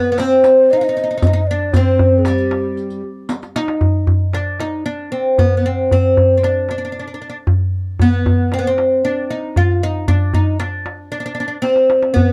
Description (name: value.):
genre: Arabic maqam ensemble.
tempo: 115 BPM.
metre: 4/4.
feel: straight.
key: unclear.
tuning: A4 = 440 Hz.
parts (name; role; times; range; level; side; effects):
oud; melody; 0.0-12.3 s; G3 to F4; -18 LUFS; equal; none.
breathy mellow low ney; second line; 0.0-3.0, 12.2-12.3 s; G4 to F5; -24 LUFS; equal; none.
darbuka; percussion; 0.2-12.3 s; none; -18 LUFS; equal; none.
riq; percussion; 0.2-3.5 s; none; -29 LUFS; equal; none.
room: light reverb.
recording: dark, warm production.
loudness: -16 LUFS.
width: mono.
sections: 0.0-3.8 A section; 3.8-12.3 B section.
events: drum fill 3.3-3.8, 11.6-12.2.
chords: none.